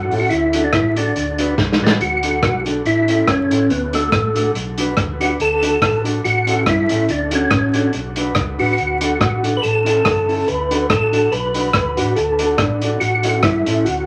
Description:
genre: ska.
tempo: 142 BPM.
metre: 4/4.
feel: swing 55% on 8ths.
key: D major.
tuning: A4 = 440 Hz.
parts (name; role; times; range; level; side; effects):
percussive tonewheel organ; melody; 0.0-14.1 s; A3 to B4; -20 LUFS; equal; overdrive, chorus vibrato, fast rotary speaker.
vintage muted fingered electric bass; bass; 0.0-14.1 s; F#1 to G2; -26 LUFS; equal; none.
mellow electric guitar; accompaniment; 0.1-13.8 s; C#4 to B4; -25 LUFS; equal; dub echo.
vintage drum kit; drums; 0.1-14.0 s; hi-hat, kick drum, rim click, snare drum; -22 LUFS; equal; none.
room: wet club reverb, RT60 0.7 s.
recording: vinyl crackle.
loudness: -17 LUFS.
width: mono.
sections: 0.0-2.0 A section; 2.0-14.1 A section.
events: drum fill 1.6-2.0.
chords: 0.3 D; 1.2 D6; 2.0 D; 2.8 A; 3.7 D; 4.5 Bm; 5.4 D; 6.2 A; 7.1 D; 7.9 Bm; 8.8 D; 9.6 A; 10.5 D; 11.3 Bm; 12.2 D; 13.0 A.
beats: | 0.31 0.73 1.16 1.58 | 2.00 2.42 2.85 3.27 | 3.70 4.12 4.54 4.97 | 5.39 5.82 6.24 6.66 | 7.09 7.51 7.93 8.36 | 8.78 9.21 9.63 10.05 | 10.47 10.90 11.32 11.74 | 12.16 12.59 13.01 13.43 | 13.85.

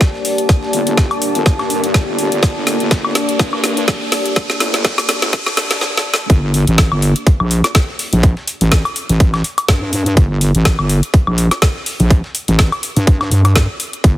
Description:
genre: bass house.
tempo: 124 BPM.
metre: 4/4.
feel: swing 56% on 16ths.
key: G minor.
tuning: A4 = 436 Hz.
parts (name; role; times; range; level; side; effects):
deep dark ambient pad; sustained chords; 0.0-6.3 s; Bb3 to D5; -22 LUFS; equal; chorus, built-in reverb, sidechain pumping.
breakbeat sampler-style drum kit; drums; 0.0-14.2 s; hi-hat, snare drum; -30 LUFS; equal; none.
electronic kick drum; drums; 0.0-14.1 s; none; -11 LUFS; equal; small room ambience.
garage drum kit; drums; 0.0-14.1 s; hi-hat, snare drum, woodblock; -18 LUFS; left 1 dB; small room ambience.
riser; sound effects; 0.3-5.8 s; none; -28 LUFS; equal; none.
warbly tape-like pad; texture; 0.0-5.8 s; G4 to A5; -23 LUFS; left 2 dB; chorus, built-in reverb, sidechain pumping.
wobble bass; bass; 0.7-14.2 s; G1 to G2; -15 LUFS; equal; chorus, sidechain pumping, high-pass filter.
room: light reverb, digital ambience.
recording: heavily compressed radio sound, high-pass filter.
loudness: -12 LUFS.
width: side -14 dB against mid.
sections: 0.0-6.3 A section; 6.3-14.2 B section.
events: build-up 0.0-6.3; drum fill 0.0-5.8, 5.8-6.3; filter sweep 0.0-6.3; riser 0.3-5.8; drop 6.3-14.2.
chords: 0.0 Gm.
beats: 0.01 | 0.49 0.98 1.46 1.94 | 2.43 2.91 3.40 3.88 | 4.36 4.85 5.33 5.81 | 6.30 6.78 7.27 7.75 | 8.23 8.72 9.20 9.69 | 10.17 10.65 11.14 11.62 | 12.11 12.59 13.07 13.56 | 14.04.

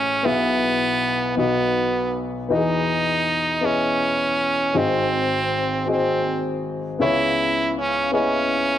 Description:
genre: gospel.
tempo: 53 BPM (dotted quarters).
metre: 6/8.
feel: straight.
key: E major.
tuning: A4 = 440 Hz.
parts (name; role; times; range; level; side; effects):
stopped French horn; melody; 0.0-8.8 s; B3 to E4; -21 LUFS; right 2 dB; none.
warm upright piano; accompaniment; 0.0-8.8 s; G#1 to E5; -22 LUFS; left 2 dB; none.
room: moderate echo chamber reverb, RT60 2.2 s.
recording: dark, warm production.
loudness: -19 LUFS.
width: side -11 dB against mid.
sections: 0.0-8.8 A section.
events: none.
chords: 0.2 E/B; 1.4 B; 2.5 Emaj7; 4.7 G#7; 7.0 C#m7.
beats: | 0.24 1.36 | 2.49 3.62 | 4.75 5.87 | 7.00 8.13.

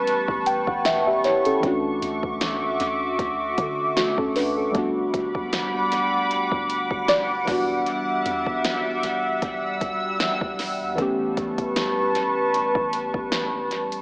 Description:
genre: contemporary R&B.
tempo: 77 BPM.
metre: 4/4.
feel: swing 54% on 16ths.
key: D major.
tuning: A4 = 435 Hz.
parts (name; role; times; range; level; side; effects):
muted felt-like synth keys; accompaniment; 0.0-14.0 s; E3 to G5; -25 LUFS; equal; chorus.
lush unison pad; sustained chords; 0.0-14.0 s; G3 to E6; -24 LUFS; equal; chorus.
smooth R&B drum kit; drums; 0.1-14.0 s; hi-hat, kick drum, snare drum; -29 LUFS; equal; vintage 12-bit sampler grit, dub echo.
soft 808-style bass; bass; 0.3-14.0 s; D1 to D3; -40 LUFS; equal; none.
room: moderate spring reverb, RT60 2.4 s.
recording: echo-heavy mix, AM radio sound.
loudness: -21 LUFS.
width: side -26 dB against mid.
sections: 0.0-14.0 A section.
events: synth keys fill 0.1-1.6, 6.7-7.9.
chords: 0.0 A9; 1.6 Dmaj9; 4.7 Gmaj7; 7.5 Em9; 11.0 A9.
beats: 0.07 0.85 | 1.63 2.41 3.19 3.97 | 4.75 5.53 6.31 7.08 | 7.86 8.64 9.42 10.20 | 10.98 11.76 12.54 13.32.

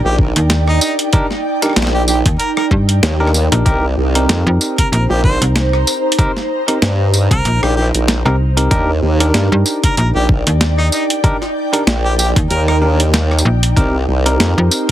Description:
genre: glitch hop.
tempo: 95 BPM.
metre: 4/4.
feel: swing 56% on 16ths.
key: unclear.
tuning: A4 = 440 Hz.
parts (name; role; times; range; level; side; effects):
clear harmonica; melody; 0.0-14.9 s; Eb4 to C5; -23 LUFS; equal; dub echo.
bell-like tine electric piano; stabs; 0.0-14.9 s; C4 to Bb4; -20 LUFS; equal; sidechain pumping, dub echo.
formant-sweep wobble bass; bass; 0.0-14.5 s; Bb1 to G2; -15 LUFS; equal; chorus.
ethereal airy pad; texture; 0.0-14.9 s; Eb4 to Bb5; -21 LUFS; right 1 dB; ensemble chorus, built-in reverb, sidechain pumping.
electronic kick drum; drums; 0.2-14.9 s; none; -15 LUFS; equal; overdrive.
slap-like FM bass; bass; 0.4-14.7 s; Bb1 to G2; -13 LUFS; equal; none.
boom bap sampler-style drum kit; drums; 0.4-14.9 s; hi-hat, rim click, snare drum, tambourine; -17 LUFS; equal; overdrive.
room: light reverb.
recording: heavily compressed radio sound, multiband compression.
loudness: -12 LUFS.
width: side -12 dB against mid.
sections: 0.0-14.9 A section.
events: none.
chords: 0.0 Ebmaj7; 3.7 Cm7; 8.7 Ebmaj7; 13.8 Cm7.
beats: 0.50 | 1.13 1.76 2.40 3.03 | 3.66 4.29 4.92 5.55 | 6.19 6.82 7.45 8.08 | 8.71 9.34 9.97 10.61 | 11.24 11.87 12.50 13.13 | 13.77 14.40.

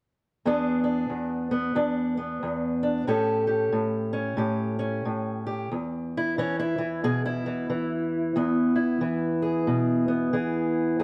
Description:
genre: acoustic country blues, solo or duo.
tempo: 91 BPM.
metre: 4/4.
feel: swing 61% on 8ths.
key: E mixolydian.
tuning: A4 = 440 Hz.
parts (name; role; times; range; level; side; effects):
fingerpicked steel-string acoustic guitar; solo; 0.5-11.0 s; E2 to A4; -26 LUFS; equal; none.
room: moderate spring reverb, RT60 1.8 s, studio reverb.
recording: cassette tape.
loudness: -27 LUFS.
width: mono.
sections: 0.5-5.7 A section; 5.7-11.0 B section.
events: none.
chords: 0.5 E7; 3.1 A7; 5.7 E.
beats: | 0.45 1.11 1.77 2.42 | 3.08 3.74 4.40 5.06 | 5.72 6.37 7.03 7.69 | 8.35 9.01 9.66 10.32 | 10.98.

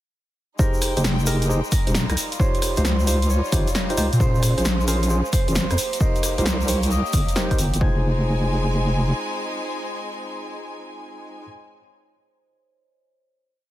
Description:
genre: UK garage, two-step garage.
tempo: 133 BPM.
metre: 4/4.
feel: swing 67% on 16ths.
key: F minor.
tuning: A4 = 440 Hz.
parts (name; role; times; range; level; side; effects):
Celtic harp; melody; 0.6-11.4 s; Bb4 to Ab5; -31 LUFS; right 3 dB; dub echo.
rich studio violin section; sustained chords; 0.6-11.4 s; G3 to Ab5; -31 LUFS; left 2 dB; sidechain pumping.
tine electric piano; stabs; 0.6-11.4 s; Db4 to Eb5; -29 LUFS; equal; dub echo.
electronic kick drum; drums; 0.6-7.9 s; none; -22 LUFS; equal; none.
tube shaker; percussion; 0.6-7.8 s; none; -32 LUFS; left 2 dB; none.
punchy analog drum machine; drums; 0.8-7.8 s; hi-hat, rim click, snare drum; -26 LUFS; equal; none.
deep soft wobble bass; bass; 1.0-9.1 s; Eb1 to Bb2; -21 LUFS; equal; chorus, sidechain pumping.
room: small room ambience.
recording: dense, heavily limited modern master.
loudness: -19 LUFS.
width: side -14 dB against mid.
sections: 0.6-7.8 drop; 7.8-11.4 final chord.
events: drop 0.6-7.8.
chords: 0.6 Fm7; 2.2 Dbmaj9#11; 4.2 Bbm9; 5.8 Cm7; 7.8 Fm7.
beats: | 0.59 1.04 1.49 1.95 | 2.40 2.85 3.30 3.75 | 4.20 4.65 5.10 5.55 | 6.00 6.46 6.91 7.36 | 7.81 8.26 8.71 9.16 | 9.61 10.06 10.52 10.97.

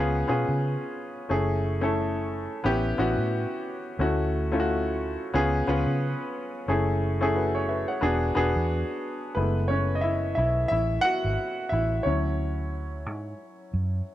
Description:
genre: lush 1970s-style soul.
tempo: 89 BPM.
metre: 4/4.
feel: swing 58% on 16ths.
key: F# minor.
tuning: A4 = 440 Hz.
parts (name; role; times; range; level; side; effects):
warm concert grand piano; accompaniment; 0.0-14.1 s; F#3 to F#5; -26 LUFS; left 1 dB; none.
vintage muted fingered electric bass; bass; 0.0-14.0 s; E1 to C#3; -28 LUFS; right 1 dB; none.
room: light reverb, studio ambience.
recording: none.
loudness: -24 LUFS.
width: side -13 dB against mid.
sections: 0.0-9.4 A section; 9.4-14.1 B section.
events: grand piano solo 9.4-14.1.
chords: 0.0 C#7; 1.3 F#m7; 2.6 A7; 4.0 Dmaj7; 5.3 C#7; 6.7 F#m7; 8.0 E7; 9.4 F#m9; 12.1 Dmaj7.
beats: 0.63 | 1.30 1.98 2.65 3.32 | 3.99 4.67 5.34 6.01 | 6.68 7.36 8.03 8.70 | 9.37 10.04 10.71 11.39 | 12.06 12.73 13.40 14.07.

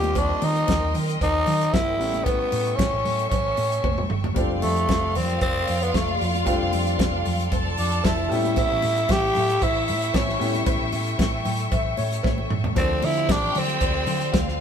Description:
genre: disco.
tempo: 114 BPM.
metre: 4/4.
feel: straight.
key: unclear.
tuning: A4 = 440 Hz.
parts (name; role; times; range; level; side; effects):
growling tenor saxophone; melody; 0.0-14.6 s; A3 to G4; -24 LUFS; equal; none.
warm concert grand piano; accompaniment; 0.0-14.6 s; F3 to G5; -31 LUFS; left 4 dB; none.
clear symphonic string section; sustained chords; 0.0-14.6 s; A4 to C#6; -31 LUFS; left 2 dB; none.
hollow-body short-scale fingered electric bass; bass; 0.0-14.5 s; F1 to Eb3; -27 LUFS; right 1 dB; none.
warm soul drum kit; drums; 0.0-14.5 s; hi-hat, kick drum, snare drum, toms; -26 LUFS; equal; none.
congas; percussion; 0.0-14.5 s; none; -34 LUFS; left 4 dB; none.
cowbell; percussion; 0.2-14.5 s; none; -35 LUFS; right 6 dB; none.
warm symphonic violin section; second line; 4.4-14.6 s; E4 to A5; -30 LUFS; right 1 dB; none.
room: moderate studio reverb, RT60 0.7 s.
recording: band playing live in one room.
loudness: -20 LUFS.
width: side -8 dB against mid.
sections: 0.0-4.4 A section; 4.4-12.8 B section; 12.8-14.6 C section.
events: drum fill 3.8-4.4, 12.2-12.8; grand piano fill 11.2-12.8.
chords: 0.0 Eb6; 2.0 A7; 4.4 F6; 8.3 A7; 12.8 Dm7.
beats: | 0.16 0.69 1.21 1.74 | 2.26 2.79 3.32 3.84 | 4.37 4.89 5.42 5.95 | 6.47 7.00 7.52 8.05 | 8.57 9.10 9.62 10.14 | 10.67 11.19 11.72 12.24 | 12.77 13.29 13.81 14.34.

